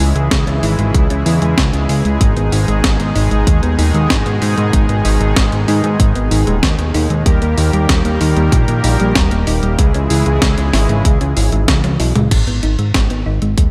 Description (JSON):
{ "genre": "synthwave", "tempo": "95 BPM", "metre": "4/4", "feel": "straight", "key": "G# harmonic minor", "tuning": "A4 = 440 Hz", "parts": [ { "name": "soft supersaw", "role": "sustained chords", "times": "0.0-12.3 s", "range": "B2 to A#4", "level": "-22 LUFS", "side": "equal", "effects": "sidechain pumping" }, { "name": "thumb-piano-like synth pluck", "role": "arpeggios", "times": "0.0-13.7 s", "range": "G3 to E4", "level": "-24 LUFS", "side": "equal", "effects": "chorus, digital delay" }, { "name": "fat analog bass", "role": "bass", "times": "0.0-13.7 s", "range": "D#1 to G#2", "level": "-18 LUFS", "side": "equal", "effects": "tube saturation, sidechain pumping" }, { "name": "clean 12-bit digital drum machine", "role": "drums", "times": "0.0-13.7 s", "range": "crash cymbal, hi-hat, snare drum, toms", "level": "-22 LUFS", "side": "equal", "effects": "gated reverb" }, { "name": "electronic kick drum", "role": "drums", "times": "0.3-13.7 s", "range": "none", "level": "-17 LUFS", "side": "equal", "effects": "none" } ], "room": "light reverb", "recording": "none", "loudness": "-14 LUFS", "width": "mono", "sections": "0.0-12.3 A section; 12.3-13.7 B section", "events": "drum fill 11.7-12.3", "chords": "0.0 C#m; 2.2 G#m; 7.3 D#; 9.8 C#m; 12.3 G#m", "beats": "0.31 0.94 1.58 | 2.21 2.84 3.47 4.10 | 4.73 5.37 6.00 6.63 | 7.26 7.89 8.52 9.16 | 9.79 10.42 11.05 11.68 | 12.31 12.95 13.58" }